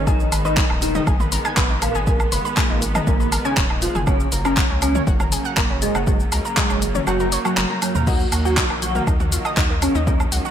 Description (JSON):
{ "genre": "melodic techno", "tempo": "120 BPM", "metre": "4/4", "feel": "straight", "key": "unclear", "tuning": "A4 = 439 Hz", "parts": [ { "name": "rich symphonic string section", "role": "sustained chords", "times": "0.0-10.5 s", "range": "Db3 to Cb4", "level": "-30 LUFS", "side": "right 3 dB", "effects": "sidechain pumping" }, { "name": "analog pluck", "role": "arpeggios", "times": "0.0-10.5 s", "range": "Bb3 to Bb5", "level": "-27 LUFS", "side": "left 1 dB", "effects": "chorus, sidechain pumping, ping-pong delay" }, { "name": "gritty driven synth bass", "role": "bass", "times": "0.0-10.4 s", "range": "Eb1 to Eb2", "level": "-25 LUFS", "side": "equal", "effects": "sidechain pumping" }, { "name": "fat analog lead", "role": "melody", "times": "0.1-10.2 s", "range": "Gb3 to Gb4", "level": "-25 LUFS", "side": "equal", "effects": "ensemble chorus, sidechain pumping, digital delay" }, { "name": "dark detuned synth bell", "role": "second line", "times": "0.1-10.2 s", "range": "Gb4 to Gb5", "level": "-31 LUFS", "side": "right 1 dB", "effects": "chorus, phaser, sidechain pumping, ping-pong delay" }, { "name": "deep house drum kit", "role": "drums", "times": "0.1-10.5 s", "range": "crash cymbal, handclaps, hi-hat, shaker, toms, woodblock", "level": "-23 LUFS", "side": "equal", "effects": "gated reverb" }, { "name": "electronic kick drum", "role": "drums", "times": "0.1-10.2 s", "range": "none", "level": "-21 LUFS", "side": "equal", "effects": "none" } ], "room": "light reverb", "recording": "bright 1980s-style digital production", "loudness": "-17 LUFS", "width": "side -9 dB against mid", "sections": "0.0-10.5 A section", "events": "kick drops out 7.1-8.1; drum fill 7.6-8.1", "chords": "0.1 Abm; 4.1 Gb; 8.1 Ebm" }